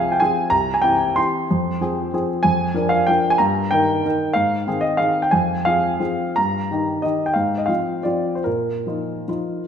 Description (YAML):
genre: classical, piano waltz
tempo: 147-201 BPM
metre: 3/4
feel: rubato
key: unclear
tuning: A4 = 441 Hz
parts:
  - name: warm baby grand piano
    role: solo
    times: 0.0-9.7 s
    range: C2 to C6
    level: -18 LUFS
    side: equal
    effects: none
room: moderate scoring stage reverb, RT60 2.1 s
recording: minimal, uncompressed stereo recording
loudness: -18 LUFS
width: side -8 dB against mid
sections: 0.0-9.7 A section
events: none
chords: 0.0 Fm; 0.5 C; 1.5 Fm; 2.4 Bb7/F; 3.4 Eb/G; 4.4 Ab; 5.3 Fm; 6.4 Eb/G; 7.4 Fm/Ab; 8.5 Bbsus4